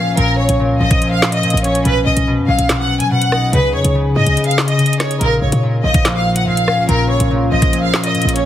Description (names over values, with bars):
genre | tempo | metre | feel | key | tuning
hip hop, drill | 143 BPM | 4/4 | half-time | Bb phrygian | A4 = 440 Hz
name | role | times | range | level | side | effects
rich studio violin section | melody | 0.0-8.5 s | Bb4 to Ab5 | -18 LUFS | equal | tape echo
concert harp | accompaniment | 0.0-8.5 s | Bb2 to D#4 | -16 LUFS | left 1 dB | none
short 808-style bass | bass | 0.0-8.5 s | Bb1 to F#3 | -20 LUFS | equal | none
drill drum kit | drums | 0.2-8.5 s | handclaps, hi-hat, kick drum, rim click, snare drum | -18 LUFS | equal | none
deep dark ambient pad | sustained chords | 6.2-8.5 s | Db3 to F4 | -25 LUFS | equal | chorus, built-in reverb
room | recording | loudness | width
digital ambience | heavily compressed radio sound, multiband compression | -12 LUFS | side -12 dB against mid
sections
0.0-8.5 A section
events
kick muted 4.4-5.2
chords
0.0 Bbm; 1.9 B; 3.5 Dbsus2; 5.2 Bbm